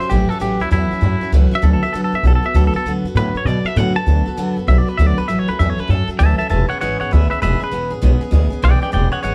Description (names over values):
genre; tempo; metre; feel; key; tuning
rockabilly; 197 BPM; 4/4; swing 64% on 8ths; A major; A4 = 440 Hz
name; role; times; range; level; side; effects
twangy electric guitar; melody; 0.0-9.3 s; E4 to A5; -24 LUFS; equal; none
picked steel-string acoustic guitar; accompaniment; 0.0-9.3 s; A2 to A4; -24 LUFS; equal; none
upright bass; bass; 0.0-9.3 s; E1 to B2; -18 LUFS; equal; none
room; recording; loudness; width
moderate large studio reverb, RT60 0.8 s; band playing live in one room; -17 LUFS; mono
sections
0.0-9.3 A section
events
clean electric guitar solo 0.0-9.3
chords
0.0 A6; 1.6 D6; 5.3 A6; 6.5 E6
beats
0.11 | 0.41 0.72 1.02 1.33 | 1.63 1.94 2.24 2.55 | 2.85 3.16 3.46 3.77 | 4.07 4.38 4.68 4.99 | 5.29 5.59 5.90 6.20 | 6.51 6.81 7.12 7.42 | 7.72 8.03 8.33 8.63 | 8.94 9.24